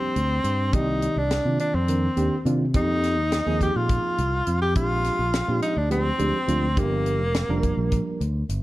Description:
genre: electric jazz fusion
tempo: 209 BPM (eighths)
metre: 7/8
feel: straight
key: C minor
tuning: A4 = 440 Hz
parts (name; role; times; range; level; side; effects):
- clear tenor saxophone; melody; 0.0-8.2 s; Bb3 to G4; -25 LUFS; equal; none
- reed electric piano; accompaniment; 0.0-8.2 s; Eb3 to D5; -28 LUFS; right 2 dB; none
- fingered electric bass; bass; 0.2-8.6 s; F1 to C3; -25 LUFS; equal; none
- tight funk drum kit; drums; 0.2-8.6 s; hi-hat, kick drum, snare drum; -27 LUFS; equal; none
room: moderate large studio reverb, RT60 1.4 s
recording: dark, warm production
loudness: -21 LUFS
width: side -17 dB against mid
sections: 0.0-8.6 A section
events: none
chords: 0.0 Gm7; 0.7 Cm9; 2.8 F7sus4; 4.8 Bb13; 6.8 Gm7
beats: 0.17 0.46 | 0.74 1.03 1.32 1.60 1.89 2.18 2.47 | 2.75 3.04 3.33 3.62 3.90 4.19 4.48 | 4.76 5.05 5.34 5.62 5.91 6.20 6.49 | 6.77 7.06 7.34 7.63 7.92 8.21 8.49

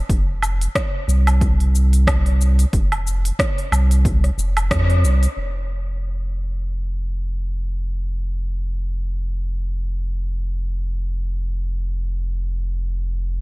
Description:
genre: organic downtempo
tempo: 91 BPM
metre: 4/4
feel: swing 57% on 16ths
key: unclear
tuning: A4 = 440 Hz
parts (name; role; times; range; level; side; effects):
- round analog bass; bass; 0.1-13.4 s; F1 to F2; -19 LUFS; equal; sidechain pumping
- electronic kick drum; drums; 0.1-4.9 s; none; -21 LUFS; equal; overdrive, small room reverb
- organic electronic drum kit; drums; 0.1-5.3 s; cabasa, hi-hat, rim click, woodblock; -24 LUFS; equal; low-pass filter on hats, small room reverb, low-pass filter on perc, low-pass filter on snare
room: digital ambience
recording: dark, warm production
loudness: -18 LUFS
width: side -22 dB against mid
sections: 0.0-5.4 A section; 5.4-13.4 B section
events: band accent 4.7-5.0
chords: none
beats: | 0.10 0.75 1.41 2.07 | 2.73 3.39 4.05 4.71 | 5.37 6.03 6.69 7.35 | 8.01 8.67 9.33 9.98 | 10.64 11.30 11.96 12.62 | 13.28

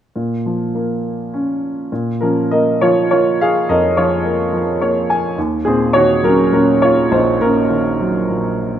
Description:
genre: classical, lyrical solo piano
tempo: 103 BPM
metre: 3/4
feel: uneven beats, rubato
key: Bb minor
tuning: A4 = 440 Hz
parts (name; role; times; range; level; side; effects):
- clear upright piano; solo; 0.2-8.8 s; Bb1 to Ab5; -14 LUFS; equal; none
room: moderate scoring stage reverb, RT60 1.9 s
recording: none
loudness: -13 LUFS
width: side -10 dB against mid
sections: 0.1-1.9 A section; 1.9-8.8 B section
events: upright piano fill 4.5-5.4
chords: 0.1 Bbm; 5.4 Ebm7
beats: | 0.15 0.74 1.31 | 1.91 2.51 3.10 | 3.68 4.24 4.80 | 5.37 5.95 6.53 | 7.11 7.70 8.31

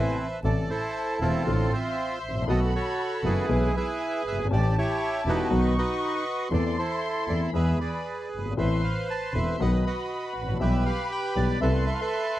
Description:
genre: tango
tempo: 118 BPM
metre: 4/4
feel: rubato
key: A harmonic minor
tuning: A4 = 441 Hz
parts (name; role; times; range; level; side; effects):
- bandoneon; melody; 0.0-12.4 s; C4 to A5; -28 LUFS; right 2 dB; none
- dark studio violin section; second line; 0.0-12.4 s; G#5 to C#6; -35 LUFS; left 3 dB; none
- warm grand piano; accompaniment; 0.0-11.8 s; E1 to A4; -29 LUFS; left 4 dB; none
- rich double bass; bass; 0.0-12.4 s; E1 to E2; -27 LUFS; right 1 dB; none
room: little or no reverb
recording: dry, close 1970s-style studio recording, vinyl crackle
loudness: -24 LUFS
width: side -14 dB against mid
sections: 0.4-12.4 A section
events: none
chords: 0.4 Am; 1.5 Dm7/A; 2.5 B7; 3.5 E/B; 4.5 A7; 5.5 B; 6.5 Am/E; 7.5 E; 8.6 Amadd9; 9.6 B; 10.6 Em/B; 11.6 Amadd9/C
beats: | 0.43 0.95 1.46 1.97 | 2.48 2.98 3.49 3.99 | 4.50 5.00 5.51 6.01 | 6.51 7.02 7.53 8.05 | 8.57 9.09 9.60 10.10 | 10.61 11.12 11.62 12.12

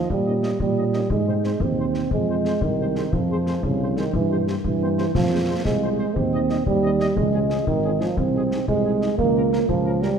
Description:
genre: military-style march for wind band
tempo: 119 BPM (dotted quarters)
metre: 6/8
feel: straight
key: Ab major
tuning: A4 = 440 Hz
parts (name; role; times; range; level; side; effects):
- warm euphonium; second line; 0.0-10.2 s; Db3 to C4; -22 LUFS; right 3 dB; none
- mellow tuba; bass; 0.1-10.1 s; Ab1 to Bb2; -24 LUFS; right 1 dB; none
- concert bass drum and concert snare drum; drums; 0.1-10.2 s; none; -28 LUFS; left 2 dB; none
- bright trumpet section; melody; 0.3-10.1 s; Ab4 to Eb5; -39 LUFS; left 1 dB; none
- mellow French horn section; accompaniment; 0.3-10.1 s; F3 to Ab4; -35 LUFS; left 6 dB; none
room: moderate scoring stage reverb, RT60 1.8 s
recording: dark, warm production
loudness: -19 LUFS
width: side -7 dB against mid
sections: 0.0-10.2 A section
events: none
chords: 0.1 Eb7/Bb; 1.1 Ab; 2.1 Fm; 4.1 C7/G; 5.1 Fm; 6.2 Cm/Eb; 7.2 Db; 8.2 Ab/C; 9.2 Bbm/Db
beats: | 0.10 0.60 | 1.11 1.61 | 2.12 2.62 | 3.13 3.63 | 4.14 4.64 | 5.14 5.65 | 6.16 6.66 | 7.16 7.67 | 8.17 8.68 | 9.18 9.69

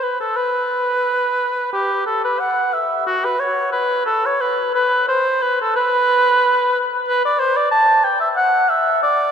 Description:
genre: classical, baroque-style fantasia for unaccompanied oboe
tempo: 90 BPM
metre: 4/4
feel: rubato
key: unclear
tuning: A4 = 440 Hz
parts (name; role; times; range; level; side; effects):
- warm oboe; solo; 0.0-9.3 s; F#4 to A5; -15 LUFS; equal; none
room: wet cathedral reverb, RT60 5.6 s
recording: in a vast, echoing space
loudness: -15 LUFS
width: side -7 dB against mid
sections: 0.0-9.3 A section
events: none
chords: none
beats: 0.38 1.06 | 1.74 2.41 3.08 3.74 | 4.40 5.07 5.74 6.41 | 7.08 7.73 8.38 9.03

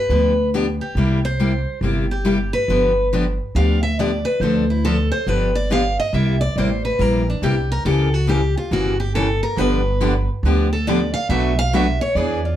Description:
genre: acoustic string swing (jazz manouche)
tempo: 139 BPM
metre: 4/4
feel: swing 64% on 8ths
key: G mixolydian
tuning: A4 = 442 Hz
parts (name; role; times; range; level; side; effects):
- picked steel-string acoustic guitar; melody; 0.0-12.6 s; D4 to F5; -22 LUFS; equal; plate reverb
- picked steel-string acoustic guitar; accompaniment; 0.1-12.4 s; B2 to A4; -22 LUFS; left 2 dB; none
- upright bass; bass; 0.1-12.6 s; G1 to E2; -20 LUFS; equal; none
- picked steel-string acoustic guitar; accompaniment; 9.6-12.4 s; B2 to B4; -25 LUFS; right 4 dB; none
room: wet club reverb, RT60 0.5 s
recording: heard from further back in the room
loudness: -16 LUFS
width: side -11 dB against mid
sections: 0.0-12.6 A section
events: steel-string acoustic guitar solo 0.0-12.6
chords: 0.0 G7; 1.0 C7; 2.7 G7; 4.4 Dm7; 5.3 G7; 6.1 C7; 7.9 C#dim7; 9.6 G7; 11.3 Bm7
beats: 0.10 0.53 | 0.96 1.39 1.82 2.25 | 2.68 3.11 3.54 3.98 | 4.41 4.84 5.27 5.70 | 6.13 6.56 6.99 7.42 | 7.86 8.29 8.72 9.15 | 9.58 10.01 10.44 10.87 | 11.30 11.74 12.17

